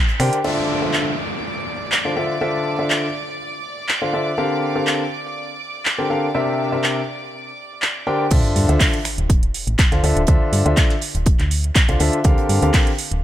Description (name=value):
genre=piano house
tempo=122 BPM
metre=4/4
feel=straight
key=D minor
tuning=A4 = 439 Hz
part: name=damped 70s drum kit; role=drums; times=0.1-0.4, 8.3-13.1 s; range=hi-hat, snare drum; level=-34 LUFS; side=right 4 dB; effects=sidechain pumping on hats, high-pass filter on hats, high-pass filter on snare, high-pass filter on room
part: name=clear grand piano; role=riff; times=0.2-12.9 s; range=C3 to G5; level=-21 LUFS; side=left 1 dB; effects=vintage 12-bit sampler grit, sidechain pumping, digital delay
part: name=solid FM bass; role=bass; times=0.2-0.3, 8.3-13.2 s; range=D1 to C3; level=-19 LUFS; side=equal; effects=sidechain pumping
part: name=house drum kit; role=drums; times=0.2-13.2 s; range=crash cymbal, finger snaps, handclaps, hi-hat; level=-22 LUFS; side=right 1 dB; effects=none
part: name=clear studio violin section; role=sustained chords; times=0.4-8.3 s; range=D5 to D6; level=-29 LUFS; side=right 2 dB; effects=sidechain pumping
part: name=downlifter and sub drop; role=sound effects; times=0.4-4.4, 8.4-10.3 s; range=none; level=-28 LUFS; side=equal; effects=none
part: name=electronic kick drum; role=drums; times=8.3-12.8 s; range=none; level=-16 LUFS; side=equal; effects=none
room=light reverb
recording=none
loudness=-16 LUFS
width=side -12 dB against mid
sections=0.4-8.3 A section; 8.3-13.2 B section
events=band accent 0.0; drop 8.3-13.2; impact 8.3-10.3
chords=0.4 Dm9; 4.4 Gm11/D; 6.3 C9; 8.3 Dm9; 12.2 Gm11/D